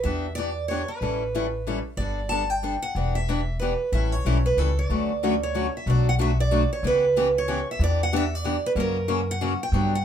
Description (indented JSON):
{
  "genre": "acoustic string swing (jazz manouche)",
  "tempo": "186 BPM",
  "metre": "3/4",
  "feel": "swing 61% on 8ths",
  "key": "D major, B minor from 5.9 s",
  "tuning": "A4 = 440 Hz",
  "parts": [
    { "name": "picked steel-string acoustic guitar", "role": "melody", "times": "0.0-10.0 s", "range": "A4 to A5", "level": "-26 LUFS", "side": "right 3 dB", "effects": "none" },
    { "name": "picked steel-string acoustic guitar", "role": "accompaniment", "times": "0.0-9.9 s", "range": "B2 to A4", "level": "-28 LUFS", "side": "left 4 dB", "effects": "none" },
    { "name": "upright bass", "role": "bass", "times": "0.0-10.0 s", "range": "E1 to G2", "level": "-25 LUFS", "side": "equal", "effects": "none" }
  ],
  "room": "moderate club reverb, RT60 0.5 s",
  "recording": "minimal, uncompressed stereo recording",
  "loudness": "-22 LUFS",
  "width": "side -9 dB against mid",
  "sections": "0.0-5.9 A section; 5.9-10.0 B section",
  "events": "none",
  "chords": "0.1 Em7; 1.0 A7; 2.0 Gadd9; 3.0 Em7; 3.9 A7; 4.9 Dmaj7; 5.9 Bm7; 6.8 C#m7b5; 7.8 Em7; 8.8 F#",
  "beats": "| 0.05 0.37 0.70 | 1.02 1.34 1.67 | 1.99 2.31 2.64 | 2.96 3.28 3.61 | 3.93 4.25 4.58 | 4.90 5.22 5.54 | 5.87 6.19 6.51 | 6.83 7.16 7.48 | 7.80 8.12 8.44 | 8.76 9.08 9.41 | 9.73 10.05"
}